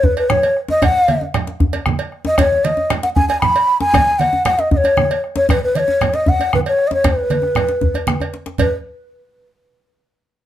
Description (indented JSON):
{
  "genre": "west african traditional, West African drum ensemble",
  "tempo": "155 BPM (dotted quarters)",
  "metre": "12/8",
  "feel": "straight",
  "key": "B major pentatonic",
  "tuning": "A4 = 440 Hz",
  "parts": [
    { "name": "mellow bass bansuri", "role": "melody", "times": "0.0-8.7 s", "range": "B4 to B5", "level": "-15 LUFS", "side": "left 1 dB", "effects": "plate reverb" },
    { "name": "bombo", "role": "percussion", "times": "0.0-8.7 s", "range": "none", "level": "-20 LUFS", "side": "equal", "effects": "none" },
    { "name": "djembe", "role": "percussion", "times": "0.0-8.7 s", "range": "none", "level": "-21 LUFS", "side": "left 2 dB", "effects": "none" },
    { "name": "cowbell", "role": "percussion", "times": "0.2-8.7 s", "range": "none", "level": "-25 LUFS", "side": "right 6 dB", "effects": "none" },
    { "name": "congas", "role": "percussion", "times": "0.3-8.7 s", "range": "none", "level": "-22 LUFS", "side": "right 4 dB", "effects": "none" }
  ],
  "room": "moderate studio reverb, RT60 0.5 s",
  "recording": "none",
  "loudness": "-14 LUFS",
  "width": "side -12 dB against mid",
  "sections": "0.0-8.6 A section; 8.6-10.1 B section",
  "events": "drum fill 8.2-8.6",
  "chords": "none"
}